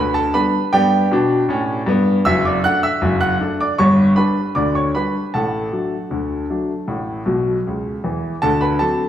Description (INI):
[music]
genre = ragtime piano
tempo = 78 BPM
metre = 2/4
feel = straight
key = D major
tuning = A4 = 440 Hz
[part]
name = clear grand piano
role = solo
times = 0.0-9.1 s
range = F#1 to F#6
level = -16 LUFS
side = equal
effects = none
[sound]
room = wet large studio reverb, RT60 1.4 s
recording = band playing live in one room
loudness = -16 LUFS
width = side -10 dB against mid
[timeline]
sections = 0.0-8.4 A section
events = grand piano fill 7.3-8.4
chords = 0.0 G; 2.3 D/F#; 3.8 G; 5.3 D/A; 6.9 A; 8.4 D7